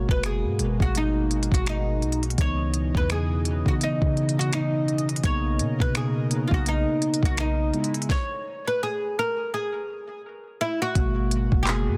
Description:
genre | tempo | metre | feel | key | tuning
contemporary R&B | 84 BPM | 4/4 | swing 58% on 16ths | G# minor | A4 = 439 Hz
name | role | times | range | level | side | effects
oud | melody | 0.0-12.0 s | D#4 to C#5 | -30 LUFS | equal | tape echo
mellow tine electric piano | accompaniment | 0.0-12.0 s | B2 to G#4 | -31 LUFS | equal | none
chorused pulse-width pad | sustained chords | 0.0-12.0 s | B2 to D#5 | -38 LUFS | equal | none
soft 808-style bass | bass | 0.0-12.0 s | F#1 to C#3 | -29 LUFS | equal | none
smooth R&B drum kit | drums | 0.1-11.9 s | finger snaps, handclaps, hi-hat, kick drum, snare drum | -27 LUFS | equal | vintage 12-bit sampler grit, soft clipping on snare
room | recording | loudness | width
little or no reverb | dense, heavily limited modern master | -25 LUFS | mono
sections
0.0-11.0 A section; 11.0-12.0 B section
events
stop 8.1-11.0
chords
0.0 G#m9; 2.4 C#m9; 5.2 Bmaj9; 7.7 E6; 11.0 G#m9

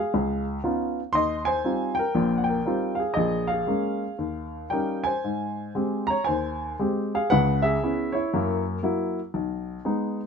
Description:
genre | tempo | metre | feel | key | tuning
solo jazz | 118 BPM | 4/4 | swing 66% on 8ths, rubato | Eb major | A4 = 440 Hz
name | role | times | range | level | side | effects
warm baby grand piano | solo | 0.0-10.2 s | Bb1 to C6 | -23 LUFS | equal | none
room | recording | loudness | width
light reverb | minimal, uncompressed stereo recording | -23 LUFS | side -6 dB against mid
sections
0.0-5.2 A section; 5.2-10.3 B section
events
none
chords
0.1 Db9; 1.1 Eb69; 3.2 Bbm7; 4.2 Eb7; 7.3 Dbm7; 8.3 Gb7; 9.3 B6

